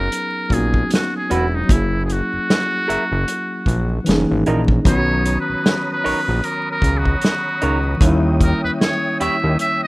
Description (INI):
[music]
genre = R&B, neo-soul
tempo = 76 BPM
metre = 4/4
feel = swing 57% on 16ths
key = B major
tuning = A4 = 440 Hz
[part]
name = trumpet with metal mute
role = melody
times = 0.0-9.9 s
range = D#4 to E5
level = -22 LUFS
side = equal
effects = none
[part]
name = tine electric piano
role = accompaniment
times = 0.0-9.9 s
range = D#3 to G#4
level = -22 LUFS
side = equal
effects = medium stereo tremolo
[part]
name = fat analog bass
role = bass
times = 0.0-9.6 s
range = E1 to D#2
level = -20 LUFS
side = equal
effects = none
[part]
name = warm soul drum kit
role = drums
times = 0.1-9.8 s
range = hi-hat, kick drum, snare drum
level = -18 LUFS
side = equal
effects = none
[part]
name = electric guitar through a small old amp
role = second line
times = 1.3-9.4 s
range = C#4 to E5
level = -24 LUFS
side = right 3 dB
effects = none
[part]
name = mellow tonewheel organ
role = sustained chords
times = 4.8-9.9 s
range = C#5 to D#6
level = -29 LUFS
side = equal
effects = chorus vibrato, lush chorus
[sound]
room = studio reverb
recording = rough home demo mix, vinyl crackle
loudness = -16 LUFS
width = side -21 dB against mid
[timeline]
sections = 0.0-9.9 A section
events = muted trumpet solo 0.0-9.9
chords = 0.0 G#m11; 1.7 F#9; 4.1 F#13; 4.8 Bmaj9; 8.0 D#7b9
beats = 0.11 0.90 | 1.69 2.48 3.27 4.06 | 4.85 5.64 6.43 7.22 | 8.01 8.79 9.59